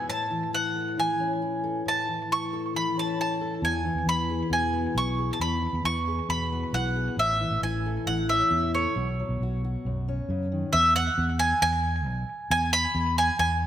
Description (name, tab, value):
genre	indie folk with a building arrangement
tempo	135 BPM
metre	4/4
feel	straight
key	E major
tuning	A4 = 441 Hz
part	bowl-back mandolin	melody	0.0-13.7 s	C#5 to C#6	-26 LUFS	right 1 dB	analog delay
part	fingerpicked steel-string acoustic guitar	accompaniment	0.0-10.7 s	E2 to A4	-31 LUFS	left 3 dB	none
part	fingered electric bass	bass	3.6-13.7 s	A1 to F#2	-28 LUFS	equal	none
room	moderate scoring stage reverb, RT60 1.7 s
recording	none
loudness	-24 LUFS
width	side -11 dB against mid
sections	0.0-10.7 A section; 10.7-13.7 B section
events	none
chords	0.1 A; 3.6 E; 7.2 A; 9.0 Bsus2; 10.7 E